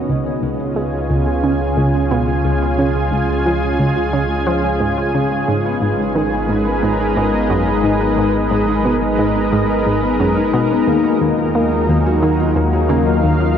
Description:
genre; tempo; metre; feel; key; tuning
ambient, sequencer-driven space music; 89 BPM; 4/4; straight; unclear; A4 = 440 Hz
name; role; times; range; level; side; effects
lush unison pad; sustained chords; 0.0-13.6 s; C#3 to G#5; -18 LUFS; right 1 dB; chorus
concert harp; arpeggios; 0.0-13.6 s; G#3 to G#5; -21 LUFS; moving between left 6 dB and right 2 dB; auto-pan, tape echo
round analog bass; bass; 0.0-13.6 s; G#1 to D#2; -23 LUFS; equal; none
analog pluck; riff; 0.1-13.5 s; C#2 to A#3; -19 LUFS; right 1 dB; chorus, tape echo
room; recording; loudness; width
wet huge ambient reverb, RT60 7.8 s; worn, warbling old tape, cassette tape, warbly pitch drift; -14 LUFS; side -8 dB against mid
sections
0.0-13.6 A section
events
fade-in on harp 0.0-13.6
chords
0.1 C#; 5.5 G#madd9; 10.9 D#madd9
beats
| 0.09 0.76 1.44 2.11 | 2.79 3.46 4.13 4.81 | 5.48 6.16 6.83 7.50 | 8.18 8.85 9.53 10.20 | 10.88 11.55 12.22 12.90 | 13.57

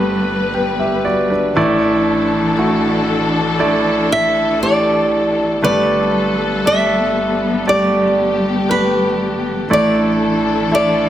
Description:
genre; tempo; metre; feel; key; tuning
pop ballad; 59 BPM; 4/4; straight; G major; A4 = 438 Hz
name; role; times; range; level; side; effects
warm concert grand piano; accompaniment; 0.0-11.1 s; G1 to G5; -16 LUFS; right 1 dB; none
dark studio string section; sustained chords; 0.0-11.1 s; E3 to B4; -20 LUFS; left 2 dB; none
flamenco guitar; melody; 4.1-11.1 s; B4 to E5; -17 LUFS; equal; tape echo
room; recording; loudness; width
moderate recital hall reverb, RT60 1.5 s, studio ambience; none; -13 LUFS; side -11 dB against mid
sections
0.0-11.1 A section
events
none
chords
0.0 Gadd9; 1.6 Asus4; 5.6 Gadd9; 9.7 Asus4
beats
0.55 | 1.56 2.58 3.60 4.62 | 5.63 6.65 7.67 8.68 | 9.70 10.72

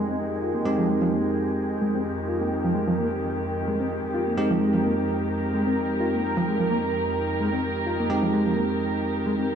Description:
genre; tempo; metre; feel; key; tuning
breakbeat; 129 BPM; 4/4; swing 55% on 16ths; F minor; A4 = 440 Hz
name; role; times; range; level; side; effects
dark studio string section; sustained chords; 0.0-9.6 s; F2 to Bb4; -27 LUFS; equal; low-pass filter
reed electric piano; riff; 0.0-9.5 s; F3 to F4; -27 LUFS; equal; overdrive, fast tremolo, low-pass filter, tape echo
bell-like tine electric piano; stabs; 0.0-9.6 s; Ab3 to G4; -27 LUFS; right 1 dB; tape echo
downlifter; sound effects; 0.0-0.7 s; none; barely audible; none; none
room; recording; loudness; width
moderate lush hall reverb, RT60 1.8 s, digital ambience; studio ambience; -22 LUFS; side -8 dB against mid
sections
0.0-9.6 A section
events
filter sweep on reed electric piano 0.0-9.6; filter sweep on string section 0.0-9.6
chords
0.0 Fm9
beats
0.19 | 0.66 1.12 1.58 2.05 | 2.52 2.98 3.44 3.91 | 4.38 4.84 5.31 5.77 | 6.24 6.70 7.17 7.63 | 8.10 8.56 9.03 9.49

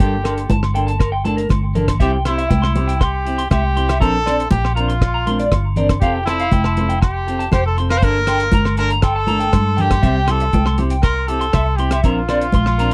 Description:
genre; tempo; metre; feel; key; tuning
highlife guitar band; 120 BPM; 4/4; straight; unclear; A4 = 440 Hz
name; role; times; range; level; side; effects
clear trumpet; melody; 0.0-12.9 s; E4 to C5; -24 LUFS; equal; none
semi-hollow electric guitar; accompaniment; 0.0-12.9 s; F3 to Bb4; -26 LUFS; equal; none
electric guitar through a small old amp; arpeggios; 0.0-12.9 s; Bb4 to C6; -26 LUFS; equal; tremolo, tape echo
vintage muted fingered electric bass; bass; 0.0-12.9 s; F1 to G2; -22 LUFS; equal; none
cloth-damped thuddy drum kit; drums; 0.0-12.9 s; hi-hat, kick drum, rim click; -21 LUFS; equal; none
congas; percussion; 0.0-12.7 s; none; -25 LUFS; equal; none
agogo bells; percussion; 0.3-12.8 s; none; -33 LUFS; equal; none
room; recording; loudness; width
little or no reverb; dry, close 1970s-style studio recording; -17 LUFS; mono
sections
0.0-12.9 A section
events
none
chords
0.0 Gmadd9; 2.0 C; 4.0 Bbadd9; 6.0 Fadd9; 8.0 Gmadd9; 10.0 C; 12.0 Bbadd9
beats
| 0.00 0.51 1.01 1.51 | 2.01 2.51 3.01 3.51 | 4.02 4.52 5.02 5.52 | 6.02 6.53 7.03 7.53 | 8.03 8.53 9.04 9.54 | 10.04 10.54 11.04 11.54 | 12.05 12.55

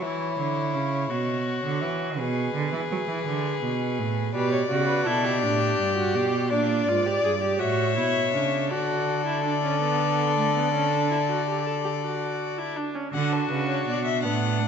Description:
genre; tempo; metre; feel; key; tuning
classical, baroque-style fugue for string quartet; 55 BPM (dotted quarters); 12/8; straight; D major from 4.3 s; A4 = 440 Hz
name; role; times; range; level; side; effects
warm violin; melody; 0.0-14.7 s; A4 to F#5; -29 LUFS; left 7 dB; none
dark violin; second line; 0.0-14.7 s; D4 to D5; -29 LUFS; left 4 dB; none
rich cello; bass; 0.0-14.7 s; G2 to F#3; -28 LUFS; right 5 dB; none
warm viola; accompaniment; 4.4-14.7 s; A3 to A4; -28 LUFS; right 3 dB; none
room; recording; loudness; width
moderate concert hall reverb, RT60 1.8 s; nothing above 8.0 kHz; -23 LUFS; side -7 dB against mid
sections
0.0-13.1 A section; 13.1-14.7 B section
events
none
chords
0.0 Dmaj13; 2.2 G#dim/B; 4.3 G/B; 6.5 Bb7; 7.6 A; 8.7 D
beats
| 0.02 1.10 2.18 3.26 | 4.34 5.43 6.51 7.60 | 8.71 9.82 10.92 12.03 | 13.14 14.23

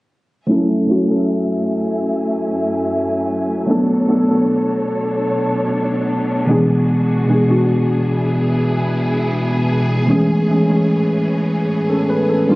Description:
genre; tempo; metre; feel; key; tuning
R&B; 75 BPM; 4/4; straight; A major; A4 = 440 Hz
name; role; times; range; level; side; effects
muted felt-like synth keys; accompaniment; 0.5-12.6 s; B2 to B4; -15 LUFS; equal; chorus, low-pass filter
warm studio string section; sustained chords; 0.5-12.6 s; F#2 to G#5; -23 LUFS; equal; low-pass filter
room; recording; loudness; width
light reverb, small room ambience; recorded on a phone in the room, studio reverb; -15 LUFS; side -20 dB against mid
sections
0.5-12.6 A section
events
filter sweep 0.5-12.6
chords
0.5 F#m7; 3.7 Bm7; 6.5 E7/B; 10.1 Amaj7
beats
| 0.48 1.28 2.08 2.88 | 3.68 4.48 5.28 6.08 | 6.88 7.68 8.48 9.28 | 10.08 10.88 11.68 12.48

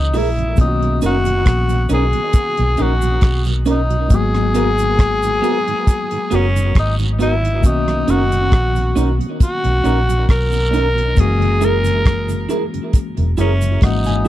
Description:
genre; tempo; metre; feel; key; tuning
lovers rock reggae; 68 BPM; 4/4; swing 54% on 16ths; B major; A4 = 440 Hz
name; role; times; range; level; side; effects
raspy tenor saxophone; melody; 0.0-14.3 s; C#4 to A#4; -20 LUFS; left 1 dB; tape echo
mellow tine electric piano; accompaniment; 0.0-14.3 s; D#3 to G#5; -24 LUFS; left 4 dB; medium stereo tremolo, tape echo
vintage muted fingered electric bass; bass; 0.0-14.2 s; E1 to C#2; -18 LUFS; equal; none
mellow tonewheel organ; accompaniment; 0.1-14.3 s; F#2 to F#4; -28 LUFS; right 8 dB; slow rotary speaker, tape echo
electric guitar at the edge of break-up; stabs; 0.1-14.3 s; B3 to A#4; -24 LUFS; right 2 dB; tape echo
damped 70s drum kit; drums; 0.1-14.2 s; hi-hat, kick drum, rim click; -13 LUFS; equal; none
cabasa and guiro; percussion; 0.1-14.3 s; none; -33 LUFS; right 5 dB; none
room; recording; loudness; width
little or no reverb; dry, close 1970s-style studio recording; -14 LUFS; side -13 dB against mid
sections
0.0-14.3 A section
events
tine electric piano fill 12.9-14.3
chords
0.0 F#9; 0.6 Bmaj9; 4.1 G#m9; 7.6 Bmaj9; 11.2 F#9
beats
| 0.58 1.46 2.35 3.23 | 4.11 4.99 5.88 6.76 | 7.64 8.52 9.40 10.29 | 11.17 12.05 12.93 13.81

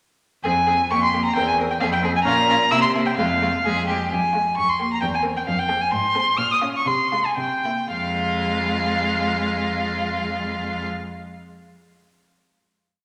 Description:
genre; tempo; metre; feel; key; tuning
quick classical-period movement for string quartet; 109-134 BPM; 2/4; straight; F minor; A4 = 440 Hz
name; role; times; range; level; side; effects
clear violin; second line; 0.4-10.9 s; E4 to Bb4; -31 LUFS; equal; none
rich viola; accompaniment; 0.4-10.9 s; Ab3 to Db4; -31 LUFS; equal; none
rich cello; bass; 0.4-10.9 s; E2 to C3; -29 LUFS; equal; none
rich violin; melody; 0.5-10.9 s; F5 to F6; -23 LUFS; equal; none
room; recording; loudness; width
wet scoring stage reverb, RT60 2.1 s; none; -21 LUFS; mono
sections
0.4-4.1 A section; 4.1-7.9 A section; 7.9-10.1 final chord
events
slowing down 5.5-7.9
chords
0.4 Fm; 0.9 Fsus24; 1.4 C7/E; 1.8 Fm; 2.3 Bbm; 2.7 C7; 3.2 Fm; 4.6 Bbm69/F; 5.0 C7/E; 5.5 Fm; 5.9 Ab; 6.4 Bbm; 6.9 Fm/C; 7.4 C7; 7.9 Fm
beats
| 0.44 0.90 | 1.35 1.80 | 2.26 2.72 | 3.18 3.65 | 4.12 4.58 | 5.03 5.48 | 5.93 6.39 | 6.87 7.37 | 7.91 8.46 | 9.01 9.55

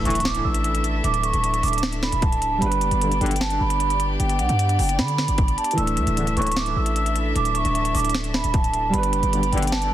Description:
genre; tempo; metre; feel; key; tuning
hip hop, trap; 152 BPM; 4/4; half-time; unclear; A4 = 439 Hz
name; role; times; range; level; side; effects
warm concert grand piano; accompaniment; 0.0-9.9 s; E3 to B4; -30 LUFS; right 1 dB; low-pass filter
warm chamber string section; sustained chords; 0.0-9.9 s; B3 to E5; -30 LUFS; left 1 dB; none
hard-hitting 808-style bass; bass; 0.0-9.9 s; D1 to D3; -24 LUFS; equal; none
impact; sound effects; 0.0-1.0 s; none; -36 LUFS; equal; none
vibraphone with medium mallets; melody; 0.1-9.9 s; F#5 to E6; -24 LUFS; right 3 dB; low-pass filter, digital delay
warm brass ensemble; stabs; 0.1-0.2, 3.0-3.3, 6.2-6.5, 9.3-9.7 s; A1 to E3; -30 LUFS; left 3 dB; digital delay
trap drum kit; drums; 0.1-9.9 s; hi-hat, kick drum, snare drum; -26 LUFS; equal; none
room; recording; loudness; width
small room ambience; dense, heavily limited modern master, vinyl crackle; -19 LUFS; side -12 dB against mid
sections
0.0-9.9 A section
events
impact 0.0-1.0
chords
0.0 Dsus2; 2.6 G; 5.8 Dsus2; 8.9 G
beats
0.25 0.64 | 1.04 1.43 1.83 2.22 | 2.62 3.01 3.41 3.80 | 4.20 4.59 4.99 5.38 | 5.78 6.17 6.57 6.96 | 7.36 7.75 8.14 8.54 | 8.93 9.33 9.72

